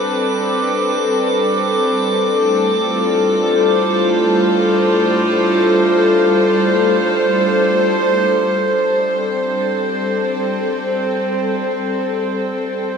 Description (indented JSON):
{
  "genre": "ambient",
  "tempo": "free time",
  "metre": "none",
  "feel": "none",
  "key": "A minor",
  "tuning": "A4 = 439 Hz",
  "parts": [
    { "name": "rich chamber string section", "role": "sustained chords", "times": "0.0-13.0 s", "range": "A2 to C5", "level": "-14 LUFS", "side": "equal", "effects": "none" },
    { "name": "drifting glass-harmonics texture", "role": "texture", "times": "0.0-8.6 s", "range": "D6", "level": "-25 LUFS", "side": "right 2 dB", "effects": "chorus, built-in reverb" },
    { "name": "muted felt-like synth keys", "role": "arpeggios", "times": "9.0-13.0 s", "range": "none", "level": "barely audible", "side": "none", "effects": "none" }
  ],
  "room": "wet huge ambient reverb, RT60 7.8 s",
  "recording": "none",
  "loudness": "-14 LUFS",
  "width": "side -6 dB against mid",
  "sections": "0.0-8.6 A section; 8.6-13.0 B section",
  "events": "none",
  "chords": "0.0 Am11; 2.5 F69/A; 8.6 Am7"
}